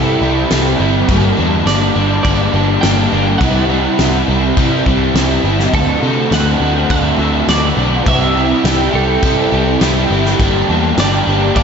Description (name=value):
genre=rock, shoegaze and dream pop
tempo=103 BPM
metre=4/4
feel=straight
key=unclear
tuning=A4 = 440 Hz
part: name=twelve-string electric guitar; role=melody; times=0.0-11.6 s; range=A4 to G5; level=-21 LUFS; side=right 2 dB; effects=lush chorus, tape echo
part: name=crunchy overdriven guitar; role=riff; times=0.0-11.6 s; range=G2 to G4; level=-14 LUFS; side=equal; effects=analog chorus
part: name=vintage muted picked electric bass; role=bass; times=0.0-11.6 s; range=G1 to C3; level=-17 LUFS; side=equal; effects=none
part: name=loose indie drum kit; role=drums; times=0.5-11.6 s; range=crash cymbal, kick drum, snare drum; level=-18 LUFS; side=equal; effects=none
room=wet lush hall reverb, RT60 1.9 s, studio reverb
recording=dreamy mix soaked in reverb, nothing above 7.8 kHz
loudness=-11 LUFS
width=side -6 dB against mid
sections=0.0-11.6 A section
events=none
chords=0.0 C6; 1.1 Gm; 3.4 C; 5.7 D7; 8.1 C6; 10.4 Gm